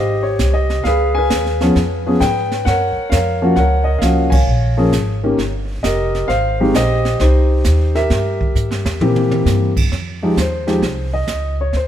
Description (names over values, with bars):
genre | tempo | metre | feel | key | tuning
jazz piano trio | 132 BPM | 4/4 | swing 67% on 8ths | F minor | A4 = 440 Hz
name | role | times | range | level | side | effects
dark baby grand piano | melody | 0.0-11.9 s | Eb3 to Ab5 | -16 LUFS | left 1 dB | none
upright bass | bass | 0.0-11.9 s | F1 to Bb2 | -18 LUFS | equal | none
jazz brush drum kit | drums | 0.4-11.9 s | brushed snare drum, crash cymbal, hi-hat, kick drum, snare drum, toms | -22 LUFS | right 2 dB | none
room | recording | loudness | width
light reverb | heard from further back in the room | -14 LUFS | side -10 dB against mid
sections
0.0-9.9 A section; 9.9-11.9 B section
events
band accent 4.2; drum fill 8.6-9.5; grand piano solo 9.9-11.9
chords
0.0 Abmaj7; 0.8 Db7; 2.7 Gbmaj7; 4.5 Bbm7; 5.4 Eb; 6.3 Abmaj7; 8.1 C7; 9.9 F7(no3)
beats
0.39 | 0.84 1.30 1.75 2.21 | 2.66 3.11 3.57 4.02 | 4.48 4.93 5.38 5.84 | 6.29 6.74 7.20 7.65 | 8.10 8.55 9.01 9.46 | 9.91 10.37 10.82 11.27 | 11.73